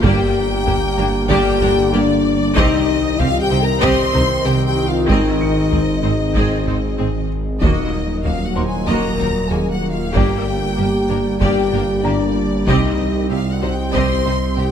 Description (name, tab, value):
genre	cinematic, hybrid orchestral and electronic film score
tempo	95 BPM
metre	4/4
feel	straight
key	unclear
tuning	A4 = 440 Hz
part	rich studio violin section	melody	0.0-14.7 s	Gb4 to Eb5	-28 LUFS	left 3 dB	none
part	rich studio violin section	second line	0.0-14.7 s	D5 to C6	-25 LUFS	left 3 dB	none
part	clear symphonic viola section	accompaniment	0.0-14.6 s	Bb3 to Ab4	-26 LUFS	right 1 dB	none
part	bright trombone section	sustained chords	0.0-14.7 s	D3 to C4	-25 LUFS	right 4 dB	none
part	chorused pulse-width pad	sustained chords	0.0-14.7 s	Eb3 to Eb5	-26 LUFS	equal	none
part	dark French horn section	sustained chords	0.0-14.7 s	D4 to C5	-21 LUFS	left 5 dB	none
part	clear symphonic double bass section	bass	0.0-14.6 s	G1 to Eb2	-25 LUFS	right 4 dB	none
part	swelling detuned saw bass	bass	0.0-14.7 s	Eb1 to C2	-23 LUFS	equal	none
part	warm symphonic cello section	bass	0.0-14.6 s	Eb2 to C3	-25 LUFS	right 3 dB	none
part	taiko ensemble	drums	0.0-14.5 s	none	-23 LUFS	equal	none
part	felt-muted upright piano	texture	0.0-14.7 s	C5 to Db7	-34 LUFS	left 1 dB	none
room	moderate concert hall reverb, RT60 2.4 s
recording	none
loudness	-15 LUFS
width	side -8 dB against mid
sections	0.0-14.7 A section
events	none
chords	0.0 Gm; 2.6 Cm; 5.1 Ab; 7.6 Ebm; 10.1 Gm; 12.7 Cm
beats	| 0.03 0.66 1.29 1.93 | 2.56 3.19 3.82 4.45 | 5.08 5.72 6.35 6.98 | 7.61 8.24 8.87 9.51 | 10.14 10.77 11.40 12.03 | 12.66 13.29 13.93 14.56